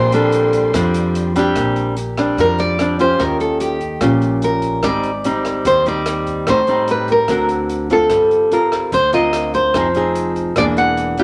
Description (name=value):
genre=bossa nova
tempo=146 BPM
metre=4/4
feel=straight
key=Bb major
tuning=A4 = 440 Hz
part: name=nylon-string guitar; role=melody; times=0.0-11.2 s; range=G4 to Gb5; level=-19 LUFS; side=equal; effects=none
part: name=nylon-string guitar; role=accompaniment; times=0.0-11.2 s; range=Ab2 to A#4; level=-20 LUFS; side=equal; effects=none
part: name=warm studio string section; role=sustained chords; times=0.0-1.5 s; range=Bb3 to C6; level=-31 LUFS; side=equal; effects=none
part: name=upright bass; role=bass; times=0.0-11.2 s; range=E1 to F2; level=-27 LUFS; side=equal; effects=none
part: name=open jazz drum kit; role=drums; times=0.1-11.2 s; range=hi-hat, kick drum, rim click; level=-30 LUFS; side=equal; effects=none
room=moderate studio reverb, RT60 0.7 s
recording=none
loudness=-16 LUFS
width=mono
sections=0.0-1.6 A section; 1.6-11.2 B section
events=nylon-string guitar solo 0.0-1.6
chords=0.0 Bb69; 3.2 Eb9; 4.8 Abmaj7; 6.5 Am7b5; 7.3 D7alt; 8.1 Gm11; 9.7 Fm7; 10.6 E7#11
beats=0.33 0.74 1.15 | 1.55 1.96 2.37 2.78 | 3.19 3.60 4.01 4.42 | 4.83 5.24 5.65 6.06 | 6.47 6.88 7.29 7.70 | 8.11 8.52 8.93 9.34 | 9.74 10.15 10.56 10.97